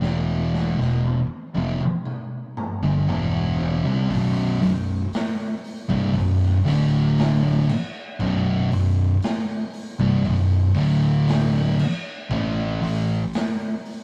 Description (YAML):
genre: stoner and doom metal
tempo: 59 BPM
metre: 4/4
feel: straight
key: B minor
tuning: A4 = 440 Hz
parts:
  - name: thick fuzz guitar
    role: riff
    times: 0.0-13.2 s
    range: B1 to A3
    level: -27 LUFS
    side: equal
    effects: distortion
  - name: thick fuzz guitar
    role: riff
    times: 0.0-13.2 s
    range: B1 to A3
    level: -23 LUFS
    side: equal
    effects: distortion
  - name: fuzz fingered electric bass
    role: bass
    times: 0.0-13.3 s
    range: B0 to C2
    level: -32 LUFS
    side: equal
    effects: overdrive, tube saturation
  - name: raw garage drum kit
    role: drums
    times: 0.0-14.0 s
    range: crash cymbal, hi-hat, kick drum, snare drum, toms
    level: -31 LUFS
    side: equal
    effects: none
  - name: fuzz guitar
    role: riff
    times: 12.3-13.2 s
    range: A2 to A3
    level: -32 LUFS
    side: equal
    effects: distortion
room: moderate booth ambience, RT60 0.2 s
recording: rough rehearsal-room recording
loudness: -22 LUFS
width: mono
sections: 0.0-4.1 A section; 4.1-14.0 B section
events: drum fill 0.0-4.1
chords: 0.0 E5; 4.1 B5; 6.7 D5; 7.7 B5; 10.8 D5; 11.8 N.C.; 12.3 A5